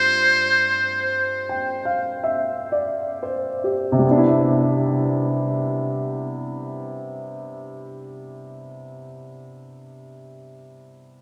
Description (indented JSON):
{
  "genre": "jazz",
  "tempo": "31-40 BPM",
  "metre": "4/4",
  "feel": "swing 68% on 8ths",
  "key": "C major",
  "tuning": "A4 = 440 Hz",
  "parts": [
    { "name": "trumpet with metal mute", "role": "melody", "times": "0.0-2.2 s", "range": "C5", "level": "-21 LUFS", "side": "equal", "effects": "none" },
    { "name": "warm upright piano", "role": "accompaniment", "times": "0.0-11.2 s", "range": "G2 to G5", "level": "-25 LUFS", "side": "equal", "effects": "none" }
  ],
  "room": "wet cathedral reverb, RT60 5.5 s",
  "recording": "recorded in a church or concert hall",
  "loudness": "-21 LUFS",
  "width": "mono",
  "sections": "0.0-4.0 A section; 4.0-11.2 B section",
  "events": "slowing down 0.0-4.0",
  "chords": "0.0 G7sus4; 4.0 Cmaj9"
}